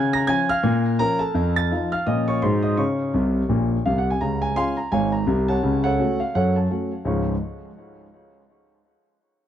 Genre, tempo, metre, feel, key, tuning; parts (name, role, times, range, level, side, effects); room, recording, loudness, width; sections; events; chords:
jazz, stride piano; 168 BPM; 4/4; swing 60% on 8ths; Db major; A4 = 438 Hz
warm concert grand piano; solo; 0.0-7.3 s; Ab1 to Bb6; -19 LUFS; equal
moderate small room ambience, RT60 0.5 s; dry, close 1970s-style studio recording; -19 LUFS; side -10 dB against mid
0.0-4.2 A section; 4.2-7.1 B section; 7.1-8.5 C section
grand piano fill 3.1-4.2
0.0 Db; 0.6 Bbm; 1.3 F7; 2.1 Bbm; 2.4 Ab7; 2.8 Bbmadd9; 4.2 Db; 5.6 Gbm/Db; 7.1 Db